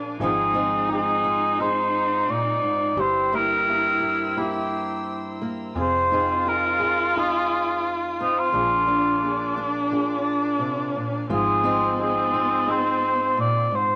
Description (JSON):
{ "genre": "acoustic folk-pop ballad", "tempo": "87 BPM", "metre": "4/4", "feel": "straight", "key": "unclear", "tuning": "A4 = 436 Hz", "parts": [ { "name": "dark viola", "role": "second line", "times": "0.0-14.0 s", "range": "C4 to F4", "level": "-30 LUFS", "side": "equal", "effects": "none" }, { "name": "fingerpicked steel-string acoustic guitar", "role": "accompaniment", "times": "0.0-14.0 s", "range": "F2 to Ab4", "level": "-32 LUFS", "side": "equal", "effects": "none" }, { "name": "warm chamber string section", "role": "sustained chords", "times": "0.0-14.0 s", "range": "Bb4 to E6", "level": "-44 LUFS", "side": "equal", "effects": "none" }, { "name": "felt-muted upright piano", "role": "arpeggios", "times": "0.0-14.0 s", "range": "F3 to Ab4", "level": "-34 LUFS", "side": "equal", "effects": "none" }, { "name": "vintage muted fingered electric bass", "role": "bass", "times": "0.0-14.0 s", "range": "F1 to Bb1", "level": "-39 LUFS", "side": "equal", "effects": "none" }, { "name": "mellow cor anglais", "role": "melody", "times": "0.2-14.0 s", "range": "Eb4 to D5", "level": "-24 LUFS", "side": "equal", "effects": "none" } ], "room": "light reverb", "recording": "none", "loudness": "-23 LUFS", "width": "mono", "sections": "0.0-14.0 A section", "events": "none", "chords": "0.2 Ab6; 3.0 C7/G; 5.8 Fm7; 8.5 Bb7; 11.3 Ab6", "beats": "| 0.20 0.89 1.59 2.28 | 2.97 3.67 4.37 5.06 | 5.76 6.46 7.15 7.84 | 8.54 9.23 9.92 10.61 | 11.30 11.99 12.68 13.37" }